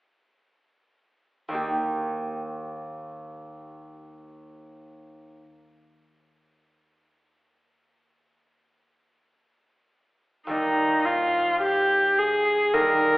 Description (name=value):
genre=classical, romantic duo for viola and harp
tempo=54 BPM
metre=4/4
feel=rubato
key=Eb major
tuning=A4 = 440 Hz
part: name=concert harp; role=accompaniment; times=1.5-13.2 s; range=Eb2 to G4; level=-30 LUFS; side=right 1 dB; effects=none
part: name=rich viola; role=melody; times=10.5-13.2 s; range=Eb4 to Bb4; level=-20 LUFS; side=equal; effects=none
room=wet recital hall reverb, RT60 1.6 s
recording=heard from further back in the room, telephone sound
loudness=-22 LUFS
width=side -21 dB against mid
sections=1.5-10.5 A section; 10.5-13.2 B section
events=none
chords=1.5 Eb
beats=| 1.52 2.66 3.77 4.87 | 5.95 7.03 8.15 9.30 | 10.48 11.62 12.74